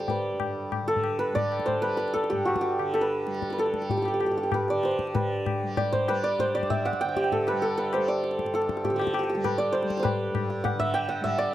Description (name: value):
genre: indian classical, Hindustani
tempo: 186-202 BPM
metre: 4/4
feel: straight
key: G raga bilaval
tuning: A4 = 439 Hz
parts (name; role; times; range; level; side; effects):
- santur; melody; 0.0-11.5 s; F#4 to G5; -25 LUFS; right 1 dB; none
- tanpura; drone; 0.0-11.5 s; G2 to G3; -36 LUFS; equal; none
- tabla; percussion; 0.0-11.4 s; none; -32 LUFS; left 6 dB; none
room: little or no reverb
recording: dry, close 1970s-style studio recording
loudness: -24 LUFS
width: side -13 dB against mid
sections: 0.0-5.2 A section; 5.2-11.5 B section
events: speeding up 0.0-11.5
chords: none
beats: | 0.08 0.40 0.72 1.04 | 1.36 1.68 2.00 2.32 | 2.64 2.95 3.27 3.58 | 3.90 4.21 4.53 4.84 | 5.15 5.46 5.78 6.08 | 6.39 6.70 7.01 7.32 | 7.62 7.93 8.24 8.54 | 8.85 9.15 9.45 9.75 | 10.05 10.36 10.66 10.96 | 11.25